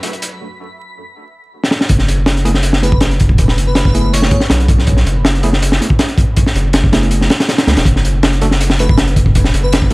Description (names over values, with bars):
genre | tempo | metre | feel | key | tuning
drum and bass, jungle | 161 BPM | 4/4 | straight | F# minor | A4 = 440 Hz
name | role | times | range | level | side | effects
crunchy breakbeat drum kit | drums | 0.0-9.9 s | hi-hat, kick drum, snare drum | -12 LUFS | equal | none
saturated sub bass | bass | 1.9-9.9 s | E1 to C#2 | -14 LUFS | equal | none
barky tine electric piano | stabs | 2.5-9.9 s | A3 to A4 | -22 LUFS | right 1 dB | low-pass filter, dub echo
airy dreamy lead | melody | 2.8-4.4, 8.8-9.8 s | B4 to C#5 | -24 LUFS | equal | chorus, dub echo
room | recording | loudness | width
studio reverb | echo-heavy mix, vinyl crackle | -10 LUFS | side -24 dB against mid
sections
0.0-1.9 A section; 1.9-9.9 B section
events
drum fill 1.6; drop 1.9-9.9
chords
0.0 D/F#; 1.9 F#m11; 7.9 N.C.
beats
0.03 | 0.41 0.78 1.15 1.52 | 1.90 2.27 2.64 3.02 | 3.39 3.76 4.13 4.51 | 4.88 5.25 5.62 6.00 | 6.37 6.74 7.11 7.49 | 7.86 8.23 8.61 8.98 | 9.35 9.72